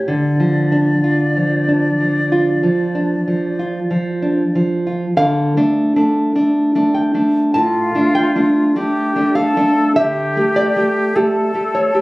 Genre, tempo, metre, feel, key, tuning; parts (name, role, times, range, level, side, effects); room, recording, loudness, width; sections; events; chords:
romantic duo for flute and classical guitar; 47-51 BPM; 4/4; rubato; D minor; A4 = 440 Hz
bright silver concert flute; melody; 0.0-12.0 s; F4 to D5; -20 LUFS; left 1 dB
nylon-string guitar; accompaniment; 0.0-12.0 s; A2 to A5; -14 LUFS; equal
little or no reverb; recorded on a phone in the room, club reverb; -14 LUFS; side -20 dB against mid
0.0-5.2 A section; 5.2-12.0 A section
0.1 Dm; 10.0 Dsus4